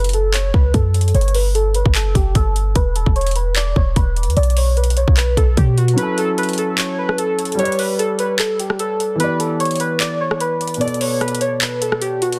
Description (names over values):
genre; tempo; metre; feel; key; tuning
hip hop, trap; 149 BPM; 4/4; half-time; F# phrygian; A4 = 435 Hz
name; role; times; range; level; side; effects
warbly lo-fi synth keys; melody; 0.0-12.4 s; F#4 to D5; -23 LUFS; equal; chorus, phaser, low-pass filter, tape echo
clean 808-style bass; bass; 0.0-6.0 s; E1 to B2; -19 LUFS; equal; none
trap drum kit; drums; 0.0-12.4 s; handclaps, hi-hat, kick drum, rim click; -22 LUFS; equal; none
dark baby grand piano; accompaniment; 5.9-12.4 s; B2 to D5; -25 LUFS; equal; low-pass filter
room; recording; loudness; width
digital ambience; dense, heavily limited modern master; -18 LUFS; mono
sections
0.0-12.4 A section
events
filter sweep 0.0-6.0; kick muted 6.0-12.4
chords
0.0 F#m; 1.1 A7sus2; 2.8 E5; 4.4 Bsus2; 6.0 F#m7; 7.6 G; 9.2 Em7; 10.8 Bm7